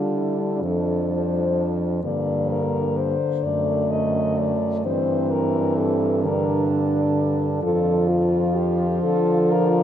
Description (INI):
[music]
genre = classical, lyrical piece for horn quartet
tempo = 43 BPM (dotted quarters)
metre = 6/8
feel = rubato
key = D minor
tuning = A4 = 440 Hz
[part]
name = mellow French horn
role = melody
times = 0.0-9.8 s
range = E4 to Eb5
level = -25 LUFS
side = left 4 dB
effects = none
[part]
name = warm French horn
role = second line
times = 0.0-9.8 s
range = A3 to F4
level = -26 LUFS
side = right 6 dB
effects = none
[part]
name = mellow French horn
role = accompaniment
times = 0.0-9.8 s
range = D3 to G3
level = -24 LUFS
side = left 2 dB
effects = none
[part]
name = clear French horn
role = bass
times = 0.0-9.8 s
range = F2 to D3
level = -26 LUFS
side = right 2 dB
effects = none
[sound]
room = wet cathedral reverb, RT60 6.2 s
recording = dark, warm production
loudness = -19 LUFS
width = side -10 dB against mid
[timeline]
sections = 0.0-9.8 A section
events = none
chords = 0.0 Dm; 2.0 Gm; 3.4 D/F#; 4.8 G5; 7.6 Fadd9; 9.0 Dm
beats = 0.62 | 2.03 3.44 | 4.85 6.25 | 7.63 9.04